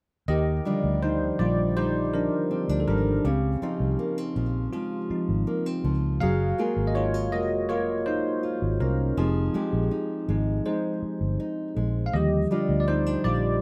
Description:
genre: contemporary R&B.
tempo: 81 BPM.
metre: 4/4.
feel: straight.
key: Eb major.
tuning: A4 = 440 Hz.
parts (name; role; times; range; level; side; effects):
bell-like tine electric piano; accompaniment; 0.3-13.6 s; D3 to F5; -29 LUFS; equal; analog chorus.
nylon-string guitar; arpeggios; 0.3-13.6 s; Db3 to Ab4; -33 LUFS; equal; delay.
vintage muted fingered electric bass; bass; 0.3-13.6 s; F1 to Eb2; -29 LUFS; equal; none.
room: moderate small room reverb, RT60 0.5 s.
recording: rough home demo mix.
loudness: -26 LUFS.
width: mono.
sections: 0.3-13.6 A section.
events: tine electric piano solo 0.3-13.6.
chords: 0.3 Ebmaj9; 3.2 Dbmaj9; 6.2 Gbmaj9; 9.2 Fm9; 12.1 Ebmaj9.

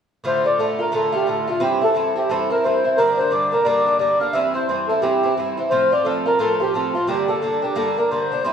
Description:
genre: celtic folk.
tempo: 176 BPM.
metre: 4/4.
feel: swing 61% on 8ths.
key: unclear.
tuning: A4 = 441 Hz.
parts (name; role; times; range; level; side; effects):
Irish bouzouki; accompaniment; 0.2-8.5 s; G2 to F4; -23 LUFS; right 1 dB; none.
mellow accordion; melody; 0.3-8.5 s; F4 to F5; -18 LUFS; equal; none.
room: wet large studio reverb, RT60 1.3 s.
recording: band playing live in one room.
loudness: -17 LUFS.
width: side -7 dB against mid.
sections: 0.2-8.5 A section.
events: none.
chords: 0.2 Dm; 1.6 C; 3.0 Gm; 4.3 C; 5.7 F; 7.1 Gm.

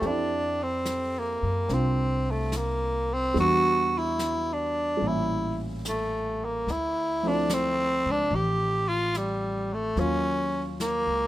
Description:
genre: jazz ballad.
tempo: 72 BPM.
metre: 4/4.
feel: swing 68% on 8ths.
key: F major.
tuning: A4 = 440 Hz.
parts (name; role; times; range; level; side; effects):
growling tenor saxophone; melody; 0.0-11.3 s; G3 to G4; -26 LUFS; equal; none.
warm grand piano; accompaniment; 0.0-11.3 s; Bb2 to A4; -32 LUFS; right 1 dB; none.
upright bass; bass; 0.0-11.3 s; A1 to Gb2; -32 LUFS; equal; none.
jazz brush drum kit; drums; 0.0-11.3 s; brushed snare drum, hi-hat, snare drum; -38 LUFS; left 1 dB; none.
room: light reverb.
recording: minimal, uncompressed stereo recording.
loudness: -24 LUFS.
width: side -15 dB against mid.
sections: 0.0-11.3 A section.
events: none.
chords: 0.0 Fmaj9; 3.4 Em9; 5.0 A7b9; 6.7 Dm9; 10.0 Ebm7.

